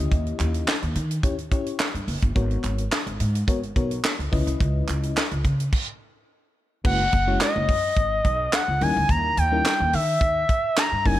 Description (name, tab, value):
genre	early-eighties boogie funk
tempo	107 BPM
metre	4/4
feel	straight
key	unclear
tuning	A4 = 440 Hz
part	FM electric piano with tremolo	accompaniment	0.0-11.2 s	G3 to D#5	-30 LUFS	left 4 dB	none
part	upright bass	bass	0.0-11.2 s	F#1 to D#3	-25 LUFS	equal	none
part	tight funk drum kit	drums	0.1-11.2 s	crash cymbal, handclaps, hi-hat, kick drum, snare drum	-25 LUFS	equal	none
part	group handclap	percussion	0.4-10.9 s	none	-33 LUFS	right 3 dB	none
part	expressive portamento lead	melody	6.9-11.2 s	D#5 to A#5	-22 LUFS	left 1 dB	chorus, slapback echo
room	studio ambience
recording	none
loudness	-20 LUFS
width	side -14 dB against mid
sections	0.0-6.8 A section; 6.8-11.2 B section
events	stop 5.7-6.8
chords	0.0 D#7b9; 2.4 G#m11; 4.3 C#m9; 6.8 F#9sus4; 8.8 D#7b9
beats	| 0.12 0.68 1.24 1.80 | 2.36 2.92 3.48 4.04 | 4.60 5.16 5.72 6.29 | 6.85 7.41 7.97 8.53 | 9.09 9.65 10.21 10.77